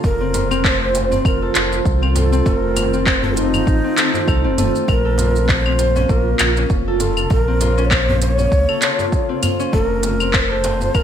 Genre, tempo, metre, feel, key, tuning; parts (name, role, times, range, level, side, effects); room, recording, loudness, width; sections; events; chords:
organic downtempo; 99 BPM; 4/4; swing 56% on 16ths; Bb harmonic minor; A4 = 442 Hz
breathy low Native American-style wooden flute; melody; 0.0-11.0 s; Eb4 to Db5; -22 LUFS; equal; ping-pong delay
granular cloud pad; sustained chords; 0.0-11.0 s; Db3 to F4; -25 LUFS; right 2 dB; built-in reverb, sidechain pumping
Celtic harp; arpeggios; 0.0-11.0 s; A3 to A4; -22 LUFS; left 2 dB; ping-pong delay
warm sub bass; bass; 0.0-11.0 s; F1 to Db2; -20 LUFS; equal; tube saturation
electronic kick drum; drums; 0.0-11.0 s; -19 LUFS; equal; overdrive
organic electronic drum kit; drums; 0.0-11.0 s; claves, handclaps, hi-hat, shaker; -21 LUFS; equal; gated reverb
djembe; percussion; 0.0-10.9 s; -27 LUFS; equal
light reverb, digital ambience; bright 1980s-style digital production; -14 LUFS; side -9 dB against mid
0.0-11.0 A section
0.0 F7; 4.9 Bbm; 9.7 F7